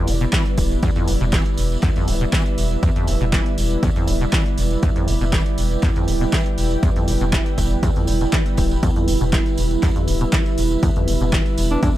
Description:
acid house; 120 BPM; 4/4; straight; E phrygian; A4 = 439 Hz
warbly tape-like pad; sustained chords; 0.0-12.0 s; G3 to D5; -27 LUFS; right 1 dB; chorus, built-in reverb, sidechain pumping
acid bass, saw; riff; 0.0-11.9 s; E1 to E3; -25 LUFS; equal; tube saturation, ensemble chorus, digital delay
airy breathy pad; texture; 0.0-12.0 s; E4 to G5; -27 LUFS; right 3 dB; chorus, sidechain pumping
round analog bass; bass; 0.1-11.8 s; D1 to E1; -21 LUFS; equal; sidechain pumping
punchy analog drum machine; drums; 0.1-11.9 s; handclaps, hi-hat; -28 LUFS; right 1 dB; overdrive
tambourine; percussion; 0.1-11.9 s; -35 LUFS; right 4 dB
electronic kick drum; drums; 0.3-11.9 s; -20 LUFS; equal; overdrive
warm alto saxophone; melody; 11.7-11.9 s; D4; -21 LUFS; equal
little or no reverb; dark, warm production; -16 LUFS; side -14 dB against mid
0.0-12.0 A section
0.0 Em
0.33 | 0.83 1.33 1.83 2.33 | 2.83 3.33 3.83 4.33 | 4.83 5.33 5.83 6.33 | 6.83 7.33 7.83 8.33 | 8.83 9.33 9.83 10.33 | 10.83 11.33 11.83

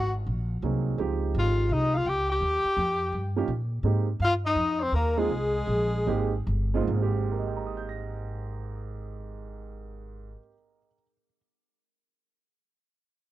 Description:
jazz; 143-168 BPM; 4/4; swing 64% on 8ths; Ab major; A4 = 440 Hz
breathy tenor saxophone; melody; 0.0-6.5 s; Ab3 to G4; -27 LUFS; left 2 dB
breathy alto saxophone; second line; 0.0-6.5 s; Ab4 to G5; -32 LUFS; equal
upright bass; bass; 0.0-10.3 s; G1 to Bb2; -29 LUFS; equal
warm upright piano; accompaniment; 0.6-11.4 s; Ab2 to Bb6; -31 LUFS; right 7 dB
small room ambience; dry, close 1970s-style studio recording; -25 LUFS; side -15 dB against mid
0.0-6.9 A section; 6.9-10.2 B section
slowing down 3.8-6.9
0.0 Ab7; 1.0 Dbmaj9#11; 2.4 Eb; 3.8 Abmaj9
0.27 0.63 | 0.98 1.34 1.70 2.06 | 2.42 2.77 3.13 3.49 | 3.84 4.20 4.56 4.93 | 5.30 5.68 6.07 6.47 | 6.88 7.30 7.73 8.15 | 8.57 8.99 9.41 9.83

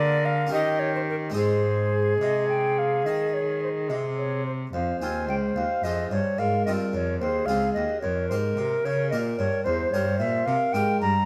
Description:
classical, baroque-style sonata movement with continuo; 73 BPM (dotted quarters); 12/8; straight; Ab major, F minor from 4.7 s; A4 = 440 Hz
mellow tenor recorder; melody; 0.0-11.0 s; Ab4 to F5; -30 LUFS; equal
concert flute; second line; 0.0-11.3 s; G4 to Bb5; -30 LUFS; equal
harpsichord; accompaniment; 0.0-11.3 s; Db2 to Bb4; -33 LUFS; equal
warm cello; bass; 0.0-11.3 s; Db2 to Eb3; -32 LUFS; equal
moderate large studio reverb, RT60 1.2 s; -25 LUFS; mono
0.0-4.7 A section; 4.7-11.3 A section
0.0 Bb7/D; 0.5 Eb7; 1.4 Ab; 4.7 Fm; 8.0 Gm7b5/F; 9.7 C7/E
0.52 | 1.36 2.21 3.06 3.90 | 4.74 5.56 6.38 7.21 | 8.03 8.84 9.66 10.47

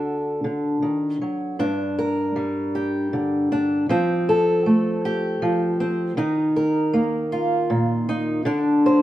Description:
folk, solo fingerstyle acoustic guitar; 52 BPM (dotted quarters); 6/8; straight; G minor; A4 = 440 Hz
fingerpicked old ladder-braced acoustic guitar; solo; 0.0-9.0 s; G2 to C5; -19 LUFS; equal
moderate stone room reverb, RT60 1.2 s; band playing live in one room; -20 LUFS; side -14 dB against mid
0.0-1.6 A section; 1.6-9.0 B section
0.0 D; 1.6 Gm; 3.9 Fadd9; 6.2 Ebsus2; 8.5 N.C.
0.44 | 1.59 2.75 | 3.90 5.04 | 6.18 7.33 | 8.47

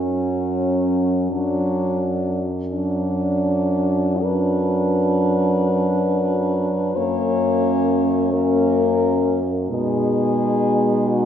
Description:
classical, lyrical piece for horn quartet; 43 BPM (dotted quarters); 12/8; rubato; A4 = 435 Hz
warm French horn; melody; 0.0-11.3 s; C#4 to C#5; -24 LUFS; left 5 dB
warm French horn; second line; 0.0-11.3 s; C#4 to D#4; -23 LUFS; right 3 dB
warm French horn; accompaniment; 0.0-11.3 s; F#3 to A#3; -23 LUFS; left 1 dB
mellow French horn; bass; 0.0-11.3 s; F#2 to B2; -24 LUFS; right 1 dB
wet concert hall reverb, RT60 2.4 s; recorded in a church or concert hall, nothing above 7.9 kHz; -17 LUFS; side -9 dB against mid
0.0-11.3 A section
0.0 F#5; 7.0 F#; 9.7 G#m/B
| 1.31 2.72 4.22 5.61 | 6.97 8.34 9.71 11.09

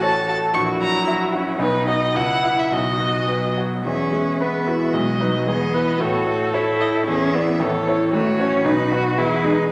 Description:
quick classical-period movement for piano quartet; 112 BPM; 2/4; rubato; E major; A4 = 439 Hz
rich violin; melody; 0.0-9.7 s; B4 to C#6; -27 LUFS; equal
rich cello; second line; 0.0-9.7 s; F#3 to A4; -26 LUFS; equal
bright grand piano; accompaniment; 0.0-9.7 s; A1 to E5; -24 LUFS; equal
rich viola; accompaniment; 0.0-9.7 s; D#4 to B4; -29 LUFS; equal
wet concert hall reverb, RT60 1.7 s; -20 LUFS; mono
0.0-3.9 A section; 3.9-9.7 B section
0.0 F#m/A; 0.5 F#7/A#; 1.6 B; 2.2 C#m; 2.7 B; 3.9 E; 4.9 B; 5.5 E; 6.0 A; 7.1 E7; 7.6 A; 8.1 F#m/A; 8.7 B; 9.2 E
0.02 | 0.55 1.08 | 1.61 2.16 | 2.73 3.29 | 3.85 4.40 | 4.94 5.47 | 6.01 6.54 | 7.08 7.61 | 8.13 8.66 | 9.18 9.71

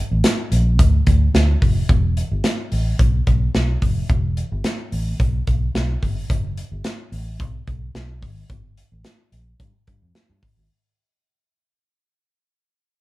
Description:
early-eighties boogie funk; 109 BPM; 4/4; straight; A4 = 440 Hz
vintage muted fingered electric bass; bass; 0.1-10.7 s; E1 to G2; -20 LUFS; equal
modern studio drum kit; drums; 0.2-10.6 s; hi-hat, kick drum, snare drum; -20 LUFS; equal
light reverb; band playing live in one room; -17 LUFS; side -18 dB against mid
0.0-10.7 A section
fade-out 0.1-10.7
0.24 0.79 1.34 | 1.90 2.44 3.00 3.55 | 4.10 4.65 5.20 5.75 | 6.30 6.85 7.40 7.95 | 8.50 9.05 9.60 10.15

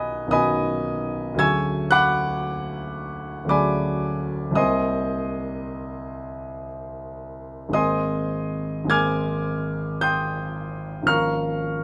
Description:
classical, impressionist solo piano; 56 BPM; 3/4; rubato; Ab lydian; A4 = 440 Hz
warm concert grand piano; solo; 0.0-11.8 s; Ab1 to G#6; -24 LUFS; equal
light reverb; -24 LUFS; mono
0.0-11.8 A section
0.0 Badd9; 1.4 Dmaj7#11; 4.6 Cm7; 7.7 Abadd9; 11.1 Bbm7/Ab
0.31 | 1.39 2.44 3.50 | 4.56 5.61 6.68 | 7.74 8.90 10.02 | 11.08

